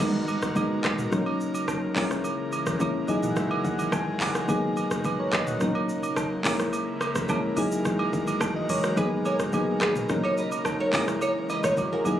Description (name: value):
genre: afrobeats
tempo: 107 BPM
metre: 4/4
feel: straight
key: G# minor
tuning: A4 = 440 Hz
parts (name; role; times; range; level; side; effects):
- soft electric-piano-like synth keys; accompaniment; 0.0-12.2 s; E3 to G#5; -27 LUFS; left 1 dB; chorus
- airy breathy pad; sustained chords; 0.0-12.2 s; B2 to A#4; -33 LUFS; right 1 dB; chorus, sidechain pumping
- warm 808-style bass; bass; 0.0-12.2 s; D#1 to A#1; -36 LUFS; equal; none
- afro-pop drum kit; drums; 0.0-12.2 s; crash cymbal, handclaps, hi-hat, kick drum, rim click, shaker, toms; -30 LUFS; equal; none
- agogo bells and woodblock; percussion; 0.0-12.2 s; none; -33 LUFS; right 5 dB; none
- flamenco guitar; riff; 9.0-12.0 s; F#4 to D#5; -29 LUFS; right 1 dB; digital delay
room: light reverb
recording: recorded on a phone in the room, club reverb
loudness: -24 LUFS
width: side -11 dB against mid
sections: 0.0-12.2 A section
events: synth keys fill 2.8-4.5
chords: 0.0 G#m9; 1.1 D#m7; 2.0 A#m7b5; 3.1 F#13; 4.5 G#m9; 5.6 D#m7; 6.4 A#m7b5; 7.6 F#13; 9.0 G#m9; 10.1 D#m7; 10.9 A#m7b5